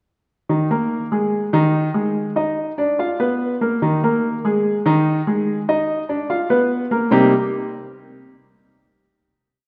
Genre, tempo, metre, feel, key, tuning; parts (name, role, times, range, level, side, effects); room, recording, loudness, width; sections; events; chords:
latin; 145 BPM; 4/4; straight; C minor; A4 = 439 Hz
warm baby grand piano; solo; 0.5-7.3 s; C3 to F5; -19 LUFS; equal
wet scoring stage reverb, RT60 1.9 s; -19 LUFS; mono
0.5-7.1 montuno (vamp); 7.1-8.8 final chord
0.5 Ebsus4; 2.2 Ab5; 3.0 Bb5; 3.8 Ebsus4; 5.5 Ab5; 6.3 Bb5; 7.1 Cm7